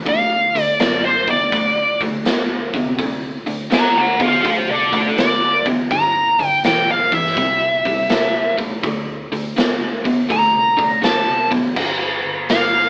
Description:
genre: blues rock power trio and southern rock.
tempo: 82 BPM.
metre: 4/4.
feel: swing 66% on 8ths.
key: unclear.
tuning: A4 = 440 Hz.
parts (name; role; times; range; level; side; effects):
crunchy overdriven guitar; riff; 0.0-11.7 s; G2 to B3; -26 LUFS; equal; none.
smooth overdriven lead guitar; melody; 0.1-12.9 s; A4 to Bb5; -18 LUFS; equal; wah.
vintage muted picked electric bass; bass; 0.1-12.9 s; G1 to C3; -35 LUFS; equal; none.
raw garage drum kit; drums; 0.1-12.7 s; crash cymbal, hi-hat, kick drum, snare drum; -23 LUFS; equal; none.
room: moderate studio reverb, RT60 0.7 s.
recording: band playing live in one room, AM radio sound.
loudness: -17 LUFS.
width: mono.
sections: 0.0-11.8 A section; 11.8-12.9 B section.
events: lead electric guitar solo 11.8-12.9.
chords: 0.1 D5; 5.9 G; 7.4 C; 8.8 D5; 11.8 G5.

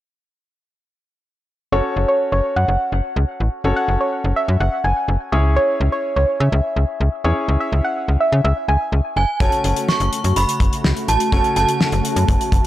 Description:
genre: synth-pop.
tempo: 125 BPM.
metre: 4/4.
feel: straight.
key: unclear.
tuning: A4 = 439 Hz.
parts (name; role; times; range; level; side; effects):
soft round pluck; second line; 1.7-8.8 s; C#5 to G#5; -20 LUFS; right 1 dB; chorus, tape echo.
clear concert grand piano; accompaniment; 1.7-12.7 s; C#4 to C#5; -26 LUFS; left 2 dB; none.
slap-like FM bass; bass; 1.7-12.6 s; F#1 to C#3; -17 LUFS; equal; none.
synth chime; melody; 9.2-12.7 s; G#5 to C#6; -20 LUFS; right 2 dB; ensemble chorus, tape echo.
string machine, violas; sustained chords; 9.4-12.7 s; C#3 to F#4; -24 LUFS; left 1 dB; phaser, ensemble chorus.
damped 70s drum kit; drums; 9.4-12.7 s; hi-hat, kick drum, snare drum; -20 LUFS; equal; none.
room: light reverb, studio ambience.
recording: dry, gritty hardware recording.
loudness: -16 LUFS.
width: side -14 dB against mid.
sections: 1.7-9.4 A section; 9.4-12.7 B section.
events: none.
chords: 1.7 F#m; 5.3 C#m; 9.2 F#sus2; 9.4 F#m.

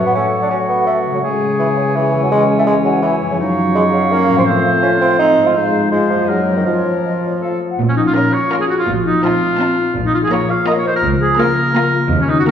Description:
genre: cinematic, playful, whimsical film cue.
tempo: 166 BPM.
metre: 3/4.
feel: straight.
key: Bb minor from 3.4 s.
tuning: A4 = 440 Hz.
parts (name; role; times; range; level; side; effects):
clear clarinet; second line; 0.0-7.6 s; C4 to B4; -22 LUFS; left 1 dB; none.
mellow hollow small flute group; second line; 0.0-7.8 s; Db5 to G#5; -23 LUFS; left 1 dB; none.
warm oboe; second line; 0.0-12.5 s; Db4 to F5; -19 LUFS; right 2 dB; none.
warm bassoon; accompaniment; 0.0-7.6 s; C#3 to F4; -17 LUFS; right 2 dB; none.
mellow French horn section; sustained chords; 0.0-7.6 s; C#3 to A3; -21 LUFS; left 1 dB; none.
concert harp; arpeggios; 0.0-12.5 s; E2 to Eb5; -21 LUFS; left 5 dB; none.
rich studio cello section; bass; 7.8-12.4 s; Db2 to Bb2; -23 LUFS; right 2 dB; none.
rich studio double bass section; bass; 7.8-12.4 s; Bb1 to Eb2; -23 LUFS; right 3 dB; none.
buzzing marimba with soft mallets; melody; 7.9-12.5 s; Db4 to F5; -19 LUFS; left 2 dB; none.
clear chamber violin section; melody; 8.2-12.5 s; A5 to Bb5; -30 LUFS; left 2 dB; none.
rich chamber violin section; second line; 8.2-12.5 s; Eb4 to Gb4; -27 LUFS; left 3 dB; none.
warm symphonic viola section; accompaniment; 8.2-12.5 s; Bb3 to Db4; -22 LUFS; right 1 dB; none.
room: wet recital hall reverb, RT60 1.7 s.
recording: recorded in a church or concert hall.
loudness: -13 LUFS.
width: side -8 dB against mid.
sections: 0.0-7.8 A section; 7.8-12.5 B section.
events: none.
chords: 0.2 F#m/A; 1.2 C#m; 2.3 C#m/E; 3.4 Gb5; 4.5 F/A; 5.6 Fm/Ab; 6.3 Ebm/Gb; 6.7 Bbm/F; 7.4 F; 7.8 Bbm; 8.9 F7/Bb; 10.0 Bb5; 11.0 Bbm/Db.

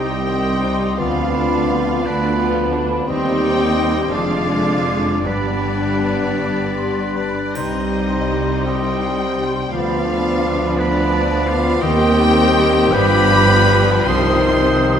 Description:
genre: classical, slow romantic movement for symphony orchestra.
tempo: 49-58 BPM (dotted quarters).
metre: 6/8.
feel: rubato.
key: C minor.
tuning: A4 = 440 Hz.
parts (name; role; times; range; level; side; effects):
rich studio violin section; melody; 0.0-15.0 s; D5 to C6; -24 LUFS; left 4 dB; none.
dark studio violin section; second line; 0.0-15.0 s; G3 to C5; -26 LUFS; left 2 dB; none.
flute section; second line; 0.0-15.0 s; B5 to Eb6; -27 LUFS; right 1 dB; none.
mellow clarinet; second line; 0.0-15.0 s; D4 to C5; -24 LUFS; left 1 dB; none.
warm oboe; second line; 0.0-15.0 s; B4 to G5; -26 LUFS; right 2 dB; none.
dark bassoon; accompaniment; 0.0-15.0 s; Eb3 to B3; -25 LUFS; right 2 dB; none.
rich studio viola section; accompaniment; 0.0-15.0 s; D3 to Eb4; -26 LUFS; equal; none.
warm French horn section; sustained chords; 0.0-15.0 s; Eb3 to G4; -24 LUFS; left 3 dB; none.
concert harp; arpeggios; 0.0-15.0 s; F2 to D5; -27 LUFS; left 9 dB; none.
rich studio cello section; bass; 0.0-15.0 s; C2 to C3; -23 LUFS; right 3 dB; none.
rich studio double bass section; bass; 0.0-15.0 s; F1 to Eb2; -24 LUFS; right 3 dB; none.
triangle and cymbal swell; percussion; 7.6-15.0 s; none; -38 LUFS; left 2 dB; none.
room: wet scoring stage reverb, RT60 1.6 s.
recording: none.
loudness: -15 LUFS.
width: side -8 dB against mid.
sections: 0.0-15.0 A section.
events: none.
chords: 0.0 Cm; 1.0 Bdim/D; 3.1 Cm/Eb; 4.1 Ddim/F; 5.3 G; 7.6 Cm; 9.7 Bdim/D; 11.8 Cm/Eb; 12.9 G7; 14.1 Cm.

